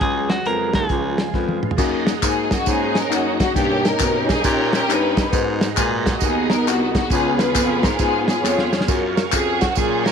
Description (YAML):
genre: uptempo gospel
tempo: 135 BPM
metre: 4/4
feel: swing 65% on 8ths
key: F# major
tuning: A4 = 442 Hz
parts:
  - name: clean electric guitar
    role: melody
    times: 0.0-1.6 s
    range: F#4 to A#4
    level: -23 LUFS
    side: right 1 dB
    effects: none
  - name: tine electric piano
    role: accompaniment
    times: 0.0-10.1 s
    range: G2 to C#5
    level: -26 LUFS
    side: left 12 dB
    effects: fast stereo tremolo
  - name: bright tonewheel organ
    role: sustained chords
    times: 0.0-10.1 s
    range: C#3 to C#6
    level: -28 LUFS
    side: right 11 dB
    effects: overdrive, chorus vibrato, slow rotary speaker
  - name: growling baritone saxophone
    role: bass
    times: 0.0-10.1 s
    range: B#1 to B2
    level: -25 LUFS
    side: right 1 dB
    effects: none
  - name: warm soul drum kit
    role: drums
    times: 0.0-10.1 s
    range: crash cymbal, hi-hat, kick drum, snare drum, toms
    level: -22 LUFS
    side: right 1 dB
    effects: none
  - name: tambourine and handclaps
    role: percussion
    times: 1.8-10.1 s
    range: none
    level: -27 LUFS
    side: left 1 dB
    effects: none
  - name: warm studio string section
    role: melody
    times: 2.2-10.1 s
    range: A#3 to C#5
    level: -20 LUFS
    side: left 1 dB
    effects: none
room: light reverb, small room ambience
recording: 1960s-style stereo with parts hard left and right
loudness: -17 LUFS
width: side -7 dB against mid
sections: 0.0-1.8 A section; 1.8-10.1 B section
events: drum fill 1.3-1.8, 8.4-8.9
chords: 0.0 C#sus4; 0.9 C#; 1.8 F#69; 3.6 D#7b13/G; 5.3 G#m9; 7.1 C#7; 8.9 F#maj7